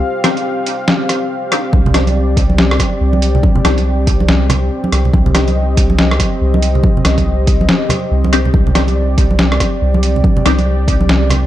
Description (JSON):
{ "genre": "deep dubstep", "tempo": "141 BPM", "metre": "4/4", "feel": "swing 61% on 16ths, half-time", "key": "C minor", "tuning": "A4 = 441 Hz", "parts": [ { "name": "dark analog pad", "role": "sustained chords", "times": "0.0-11.5 s", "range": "C4 to F5", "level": "-19 LUFS", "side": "equal", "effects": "chorus" }, { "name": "filtered dub chord stab", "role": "stabs", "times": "0.2-5.4, 8.3-10.6 s", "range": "C4 to G4", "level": "-22 LUFS", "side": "left 3 dB", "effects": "phaser, wide subtle chorus, dub echo" }, { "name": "trip hop sampler-style drum kit", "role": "drums", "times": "0.2-11.4 s", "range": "hi-hat, rim click, snare drum", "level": "-17 LUFS", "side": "left 1 dB", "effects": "overdrive" }, { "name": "soft dub sub bass", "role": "bass", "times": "1.7-11.5 s", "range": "C2", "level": "-14 LUFS", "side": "equal", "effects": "none" }, { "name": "electronic kick drum", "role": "drums", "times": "1.7-11.0 s", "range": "none", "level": "-14 LUFS", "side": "equal", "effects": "none" }, { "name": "congas", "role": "percussion", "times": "1.7-11.4 s", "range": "none", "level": "-20 LUFS", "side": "right 3 dB", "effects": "none" } ], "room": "light reverb, digital ambience", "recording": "dark, warm production", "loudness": "-11 LUFS", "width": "side -13 dB against mid", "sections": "0.0-11.5 A section", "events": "break 0.0-1.7", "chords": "0.0 Cmadd9", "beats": "| 0.03 0.45 0.88 1.30 | 1.73 2.16 2.58 3.01 | 3.43 3.86 4.28 4.71 | 5.13 5.56 5.99 6.41 | 6.84 7.26 7.69 8.11 | 8.54 8.96 9.39 9.82 | 10.24 10.67 11.09" }